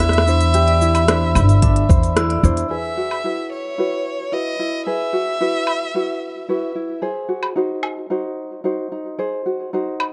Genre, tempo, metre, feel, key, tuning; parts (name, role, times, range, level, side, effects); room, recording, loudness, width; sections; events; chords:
folktronica; 111 BPM; 4/4; straight; A4 = 443 Hz
rich violin; melody; 0.0-6.7 s; C#5 to E5; -25 LUFS; equal; digital delay
vibraphone with hard mallets; second line; 0.0-2.7 s; D5 to E6; -27 LUFS; equal; digital delay
tenor ukulele; arpeggios; 0.0-10.1 s; D4 to C5; -25 LUFS; equal; low-pass filter, digital delay
upright bass; bass; 0.0-2.6 s; G1 to E2; -18 LUFS; equal
organic electronic drum kit; drums; 0.0-10.1 s; cabasa, hi-hat, rim click, woodblock; -25 LUFS; equal
electronic kick drum; drums; 1.6-2.0 s; -20 LUFS; equal
light reverb, small room ambience; dark, warm production, nothing above 10.4 kHz; -19 LUFS; mono
0.0-2.7 A section; 2.7-10.1 B section
band accent 2.2; filter sweep on ukulele 2.7-10.1
0.0 Cadd9; 2.7 Eadd9; 7.0 G#7